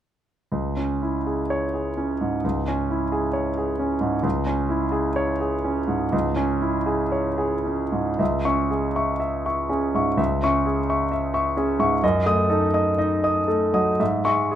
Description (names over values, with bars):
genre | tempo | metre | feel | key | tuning
classical, romantic character piece for solo piano | 53-67 BPM | 2/4 | rubato | C# minor | A4 = 440 Hz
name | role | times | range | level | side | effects
clear concert grand piano | solo | 0.5-14.6 s | C#2 to D#6 | -20 LUFS | equal | none
room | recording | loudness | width
moderate large studio reverb, RT60 1.5 s | none | -20 LUFS | side -10 dB against mid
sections
0.5-8.2 A section; 8.2-14.6 B section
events
none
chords
0.5 C#m; 12.0 D#dim/F#; 14.0 C#m/G#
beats
| 0.53 1.50 | 2.44 3.35 | 4.25 5.17 | 6.13 7.12 | 8.20 9.21 | 10.18 11.12 | 12.02 12.99 | 14.00